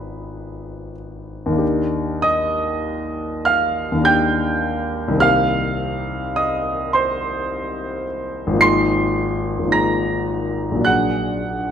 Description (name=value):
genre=classical, impressionist solo piano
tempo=44-54 BPM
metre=3/4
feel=rubato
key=Eb major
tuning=A4 = 440 Hz
part: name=clear grand piano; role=solo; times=0.0-11.7 s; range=Ab1 to C7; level=-18 LUFS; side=equal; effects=none
room=moderate recital hall reverb, RT60 1.7 s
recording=close, detailed microphones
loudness=-17 LUFS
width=side -8 dB against mid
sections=0.0-11.7 A section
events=none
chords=0.0 Abm6; 1.6 Ebmaj7; 5.2 Cm7; 8.6 Ab69; 10.9 Bbaug7